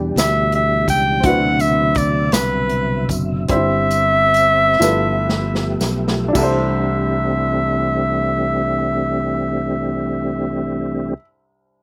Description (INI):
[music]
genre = slow gospel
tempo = 35-56 BPM (dotted quarters)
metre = 6/8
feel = straight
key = C major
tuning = A4 = 440 Hz
[part]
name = warm upright piano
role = accompaniment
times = 0.0-11.8 s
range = C2 to C5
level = -26 LUFS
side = equal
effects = none
[part]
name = mellow tonewheel organ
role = sustained chords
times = 0.0-11.1 s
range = B2 to E5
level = -25 LUFS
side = equal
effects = fast rotary speaker, chorus vibrato
[part]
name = modern bright fingered electric bass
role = bass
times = 0.0-11.1 s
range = F#1 to E2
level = -25 LUFS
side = equal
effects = none
[part]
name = bright alto saxophone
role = melody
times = 0.2-11.1 s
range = B4 to G5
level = -21 LUFS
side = equal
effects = slapback echo
[part]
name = natural country drum kit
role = drums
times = 0.2-6.6 s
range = hi-hat, kick drum, snare drum, splash cymbal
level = -25 LUFS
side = equal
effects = none
[part]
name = tambourine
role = percussion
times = 0.2-6.9 s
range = none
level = -31 LUFS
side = equal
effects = none
[sound]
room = little or no reverb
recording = recorded outdoors, with no room sound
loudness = -18 LUFS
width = mono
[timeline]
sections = 0.0-6.3 A section; 6.3-11.8 B section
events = slowing down 1.2-6.3; drum fill 4.8-6.3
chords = 0.0 Em7; 1.2 D13; 3.5 C/G; 4.8 G13; 6.3 C69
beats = 0.17 | 1.24 2.33 | 3.49 4.80 | 6.34 8.06 | 9.77 11.48